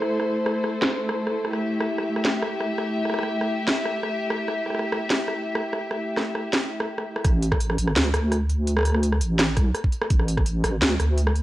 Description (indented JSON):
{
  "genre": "half-time drum and bass",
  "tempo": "168 BPM",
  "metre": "4/4",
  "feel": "half-time",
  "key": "A minor",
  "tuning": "A4 = 438 Hz",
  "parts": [
    { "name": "dark chamber string section", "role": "sustained chords", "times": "0.0-7.2 s", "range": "A3 to E5", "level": "-25 LUFS", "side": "left 1 dB", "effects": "sidechain pumping" },
    { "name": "drum and bass drum kit", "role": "drums", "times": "0.0-11.4 s", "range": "hi-hat, rim click, snare drum", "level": "-25 LUFS", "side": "equal", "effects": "low-pass filter on snare, cassette tape, low-pass filter on hats, low-pass filter on room" },
    { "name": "deep soft wobble bass", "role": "bass", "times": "7.2-11.4 s", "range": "A1 to D2", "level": "-22 LUFS", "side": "equal", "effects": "chorus" },
    { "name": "electronic kick drum", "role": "drums", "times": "7.2-10.4 s", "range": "none", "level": "-21 LUFS", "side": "equal", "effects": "cassette tape" }
  ],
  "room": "light reverb",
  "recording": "home recording on cassette",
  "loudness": "-21 LUFS",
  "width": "side -16 dB against mid",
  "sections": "0.0-7.2 A section; 7.2-11.4 B section",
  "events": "drop 7.2-11.4",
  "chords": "0.0 Am; 7.2 N.C."
}